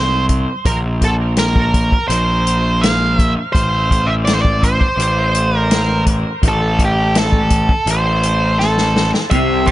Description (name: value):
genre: psychedelic rock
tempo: 83 BPM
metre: 4/4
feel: straight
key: unclear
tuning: A4 = 437 Hz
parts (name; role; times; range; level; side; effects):
- octave-fuzz lead guitar; melody; 0.0-9.7 s; G4 to F5; -17 LUFS; right 1 dB; distortion, analog delay
- fuzz picked electric bass; bass; 0.0-9.7 s; A1 to C2; -17 LUFS; equal; overdrive
- vintage drum kit; drums; 0.3-9.7 s; hi-hat, kick drum, snare drum; -17 LUFS; equal; none
- twangy electric guitar; riff; 9.3-9.7 s; C3; -15 LUFS; left 1 dB; phaser, double-tracked left and right, analog delay
- congas; percussion; 9.3-9.7 s; none; barely audible; none; none
room: light reverb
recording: echo-heavy mix, nothing above 10.6 kHz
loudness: -13 LUFS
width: side -15 dB against mid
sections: 0.0-9.7 A section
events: drum fill 8.6-9.3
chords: 0.0 N.C.; 0.6 Bbsus2; 3.5 Am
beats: | 0.65 1.37 2.09 2.82 | 3.54 4.26 4.98 5.71 | 6.43 7.15 7.87 8.59 | 9.32